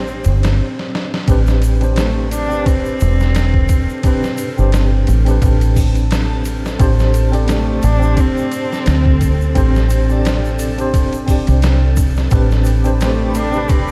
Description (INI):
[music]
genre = trip hop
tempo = 87 BPM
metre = 4/4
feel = swing 55% on 16ths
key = A minor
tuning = A4 = 442 Hz
[part]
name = warm cello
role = melody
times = 0.0-13.9 s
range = A3 to D4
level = -25 LUFS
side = equal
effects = vintage 12-bit sampler grit, tape echo
[part]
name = tine electric piano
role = accompaniment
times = 0.0-13.9 s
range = C4 to D5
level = -23 LUFS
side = equal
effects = overdrive, tremolo, tape echo
[part]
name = deep dub fingered electric bass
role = bass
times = 0.0-13.9 s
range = E1 to D2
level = -17 LUFS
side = equal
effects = none
[part]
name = backwards swelling texture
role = texture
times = 3.9-13.9 s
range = D4 to A4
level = -36 LUFS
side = equal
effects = none
[part]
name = tube shaker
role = percussion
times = 0.1-13.9 s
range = none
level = -40 LUFS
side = equal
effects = none
[part]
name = trip hop sampler-style drum kit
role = drums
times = 0.2-13.9 s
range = hi-hat, kick drum, ride cymbal, snare drum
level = -22 LUFS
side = equal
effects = none
[part]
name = dark analog pad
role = sustained chords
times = 12.6-13.9 s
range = C4 to D6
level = -30 LUFS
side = equal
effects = chorus
[sound]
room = light reverb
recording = vinyl crackle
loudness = -15 LUFS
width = mono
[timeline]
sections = 0.0-1.3 A section; 1.3-13.9 B section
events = stop 0.6-1.3; drum fill 0.8-1.3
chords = 0.0 Gsus4; 1.3 Am11; 6.8 Gsus4/A; 12.3 Am11